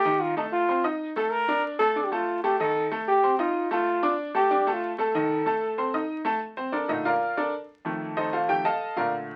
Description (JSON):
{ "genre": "latin", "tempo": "188 BPM", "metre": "4/4", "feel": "straight", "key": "Bb major", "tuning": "A4 = 441 Hz", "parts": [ { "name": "clear trombone", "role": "melody", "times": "0.0-6.1 s", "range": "Eb4 to Bb4", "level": "-26 LUFS", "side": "equal", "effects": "none" }, { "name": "bright upright piano", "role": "accompaniment", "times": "0.0-9.4 s", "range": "F2 to Eb6", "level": "-29 LUFS", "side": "equal", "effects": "none" } ], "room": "moderate studio ambience, RT60 0.4 s", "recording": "very old 78 rpm record, vinyl crackle", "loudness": "-26 LUFS", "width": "mono", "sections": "0.0-6.4 A section; 6.4-9.4 B section", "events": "upright piano solo 6.4-9.4", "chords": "0.1 F7; 1.3 Bbmaj7; 2.6 F7; 3.9 Dmadd11/A; 5.1 Adim/Eb; 6.4 Bbmaj7; 7.7 F7", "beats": "| 0.05 0.37 0.69 1.00 | 1.32 1.64 1.96 2.28 | 2.60 2.91 3.23 3.55 | 3.87 4.19 4.50 4.82 | 5.14 5.46 5.78 6.09 | 6.41 6.73 7.05 7.37 | 7.69 8.00 8.32 8.64 | 8.96 9.28" }